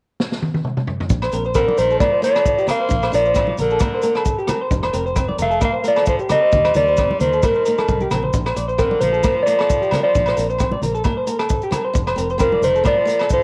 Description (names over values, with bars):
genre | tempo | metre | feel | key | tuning
highlife guitar band | 133 BPM | 4/4 | swing 55% on 16ths | Bb major | A4 = 435 Hz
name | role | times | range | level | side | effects
vintage drum kit | drums | 0.2-13.4 s | hi-hat, kick drum, rim click, snare drum, toms | -24 LUFS | equal | cassette tape
fingerpicked steel-string acoustic guitar | accompaniment | 1.1-13.3 s | Bb3 to D4 | -32 LUFS | equal | cassette tape
fingered electric bass | bass | 1.1-12.8 s | F1 to Eb2 | -28 LUFS | equal | none
maracas | percussion | 1.1-13.4 s | none | -40 LUFS | equal | none
electric guitar through a small old amp | arpeggios | 1.2-13.4 s | G4 to D5 | -26 LUFS | equal | cassette tape, tape echo
agogo bells | percussion | 1.2-13.3 s | none | -32 LUFS | equal | none
mellow electric guitar | melody | 1.6-13.4 s | Bb4 to F5 | -19 LUFS | equal | cassette tape
raspy alto saxophone | second line | 1.6-13.4 s | D3 to Bb3 | -31 LUFS | equal | cassette tape
congas | percussion | 1.7-13.0 s | none | -30 LUFS | equal | none
room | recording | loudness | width
moderate spring reverb, RT60 1.6 s, small room ambience | home recording on cassette | -18 LUFS | mono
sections
0.0-1.1 A section; 1.1-13.4 B section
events
drum fill 0.2-1.1, 7.8-8.3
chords
0.0 N.C.; 1.1 Bb; 4.7 Fsus4; 6.5 Eb; 8.3 Bb; 11.9 Fsus4